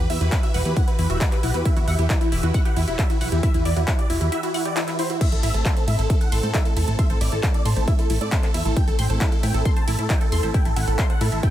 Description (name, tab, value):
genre	uplifting trance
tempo	135 BPM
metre	4/4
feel	straight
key	unclear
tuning	A4 = 440 Hz
part	big supersaw lead	melody	0.0-11.5 s	E4 to A5	-28 LUFS	right 1 dB	phaser, sidechain pumping, ping-pong delay
part	analog string pad	sustained chords	0.0-11.5 s	E3 to B4	-31 LUFS	left 1 dB	ensemble chorus, sidechain pumping
part	tight sequenced synth	arpeggios	0.0-11.5 s	E4 to C6	-31 LUFS	left 1 dB	chorus, phaser, sidechain pumping, dub echo
part	plucky analog bass	bass	0.0-11.4 s	E1 to A2	-22 LUFS	equal	tube saturation, sidechain pumping
part	big-room dance drum kit	drums	0.1-11.5 s	crash cymbal, handclaps, hi-hat, ride cymbal	-30 LUFS	equal	none
part	electronic kick drum	drums	0.3-11.5 s	none	-20 LUFS	equal	none
room	digital ambience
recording	none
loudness	-19 LUFS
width	side -12 dB against mid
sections	0.0-11.5 A section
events	break 4.3-5.2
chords	0.0 Emadd9; 5.2 Am